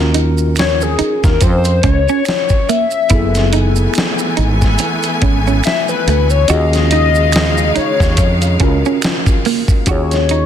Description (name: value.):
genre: R&B, neo-soul.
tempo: 71 BPM.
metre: 4/4.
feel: swing 57% on 16ths.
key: unclear.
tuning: A4 = 440 Hz.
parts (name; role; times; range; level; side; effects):
mellow tine electric piano; accompaniment; 0.0-10.5 s; Cb4 to Bb4; -22 LUFS; left 3 dB; medium stereo tremolo.
woody fretless electric bass; bass; 0.0-10.5 s; Gb1 to F2; -14 LUFS; equal; none.
electric guitar at the edge of break-up; second line; 0.1-10.5 s; A3 to Gb4; -21 LUFS; right 12 dB; none.
dusty soul sampler-style drum kit; drums; 0.1-10.5 s; hi-hat, kick drum, snare drum; -16 LUFS; equal; none.
maracas and finger snaps; percussion; 0.4-10.3 s; none; -28 LUFS; right 9 dB; none.
hollow square lead; melody; 0.6-10.5 s; Ab4 to Fb5; -17 LUFS; left 6 dB; chorus, slapback echo.
bright studio string section; sustained chords; 3.1-9.8 s; Db3 to Ab5; -21 LUFS; equal; none.
room: light reverb, digital ambience.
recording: dense, heavily limited modern master.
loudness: -11 LUFS.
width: side -9 dB against mid.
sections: 0.0-9.9 A section.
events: analog synth lead solo 0.0-9.9.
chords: 0.0 Ebm11; 3.1 Gbm11; 6.5 Ebm11.